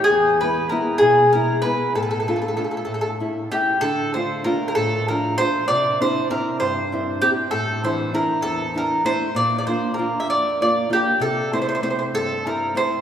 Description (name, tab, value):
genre	italian folk, Italian serenade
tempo	65 BPM (dotted quarters)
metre	6/8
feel	straight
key	D minor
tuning	A4 = 438 Hz
part	mandolin	melody	0.0-13.0 s	G4 to E5	-19 LUFS	equal	none
part	nylon-string guitar	accompaniment	0.0-13.0 s	E2 to F4	-24 LUFS	equal	none
room	wet church reverb, RT60 3.5 s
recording	recorded in a church or concert hall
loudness	-18 LUFS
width	side -9 dB against mid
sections	0.0-13.0 A section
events	none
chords	0.1 E; 1.9 Dm/A; 2.9 A; 3.8 Dm; 5.7 Cadd9; 7.5 Asus4; 9.3 Bb; 11.2 C6